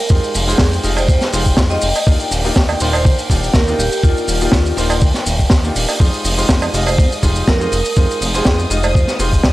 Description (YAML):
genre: nu-disco, nu disco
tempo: 122 BPM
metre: 4/4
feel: swing 54% on 16ths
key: F dorian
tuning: A4 = 440 Hz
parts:
  - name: vibraphone with hard mallets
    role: melody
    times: 0.0-9.0 s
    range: F4 to Eb5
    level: -22 LUFS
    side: right 1 dB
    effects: vintage 12-bit sampler grit, tape echo
  - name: rich studio violin section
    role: sustained chords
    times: 0.0-9.5 s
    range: G5 to Eb6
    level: -28 LUFS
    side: left 4 dB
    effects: sidechain pumping
  - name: bright baby grand piano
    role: accompaniment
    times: 0.1-9.5 s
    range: Ab3 to Eb5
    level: -23 LUFS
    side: left 1 dB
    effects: sidechain pumping, tape echo
  - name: chorused synth bass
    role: bass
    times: 0.1-9.5 s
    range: Eb1 to F2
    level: -19 LUFS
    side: equal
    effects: tube saturation
  - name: electronic kick drum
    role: drums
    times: 0.1-9.5 s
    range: none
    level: -14 LUFS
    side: equal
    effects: none
  - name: raw garage drum kit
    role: drums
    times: 0.1-9.5 s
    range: hi-hat, shaker, snare drum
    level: -18 LUFS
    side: equal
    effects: none
  - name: cowbell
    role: percussion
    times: 1.0-8.9 s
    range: none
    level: -22 LUFS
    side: right 4 dB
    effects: none
room: small room ambience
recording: none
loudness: -12 LUFS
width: side -17 dB against mid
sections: 0.0-9.5 A section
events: none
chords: 0.0 Fm7; 2.1 Ebmaj7; 6.0 Fm7